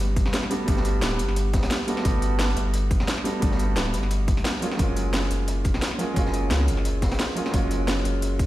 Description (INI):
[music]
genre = liquid drum and bass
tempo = 175 BPM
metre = 4/4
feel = swing 54% on 16ths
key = G lydian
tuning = A4 = 442 Hz
[part]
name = warm concert grand piano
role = accompaniment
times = 0.0-8.5 s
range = F#3 to F#4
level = -27 LUFS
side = right 1 dB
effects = tape echo
[part]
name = warm sub bass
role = bass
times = 0.0-8.5 s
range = D1 to C#2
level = -25 LUFS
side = equal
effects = none
[part]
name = impact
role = sound effects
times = 0.4-0.7 s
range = none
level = -40 LUFS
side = equal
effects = none
[part]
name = crunchy breakbeat drum kit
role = drums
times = 0.2-8.5 s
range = hi-hat, snare drum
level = -34 LUFS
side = equal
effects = high-pass filter on hats, high-pass filter on snare, high-pass filter on room
[part]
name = drum and bass drum kit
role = drums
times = 0.2-8.5 s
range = hi-hat, snare drum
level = -30 LUFS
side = equal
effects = none
[part]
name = electronic kick drum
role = drums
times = 0.2-8.5 s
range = none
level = -23 LUFS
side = equal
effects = none
[sound]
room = light reverb, studio ambience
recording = played on a big sound system in a bare room, stone room reverb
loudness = -21 LUFS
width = side -15 dB against mid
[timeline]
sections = 0.0-8.5 A section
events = impact 0.0-0.7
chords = 0.0 Gmaj9; 4.6 F#maj9